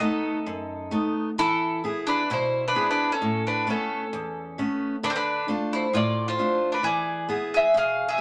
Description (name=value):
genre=greek folk, Greek bouzouki band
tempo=132 BPM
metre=4/4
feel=straight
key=unclear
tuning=A4 = 441 Hz
part: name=Greek bouzouki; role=melody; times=0.0-8.2 s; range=A4 to F5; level=-29 LUFS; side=equal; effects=none
part: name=mandolin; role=second line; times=0.0-8.2 s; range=C4 to G#4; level=-30 LUFS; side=equal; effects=none
part: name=picked steel-string acoustic guitar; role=accompaniment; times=0.0-8.2 s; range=E2 to G#4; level=-31 LUFS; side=equal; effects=none
room=wet small room reverb, RT60 0.5 s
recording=none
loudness=-25 LUFS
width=mono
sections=0.0-8.2 A section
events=speeding up 0.0-8.2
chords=0.0 B7; 1.4 E; 3.2 Aadd9; 5.0 Dm; 6.8 E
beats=0.00 0.47 0.93 | 1.39 1.85 2.31 2.77 | 3.22 3.68 4.13 4.59 | 5.04 5.49 5.94 6.39 | 6.84 7.29 7.73 8.18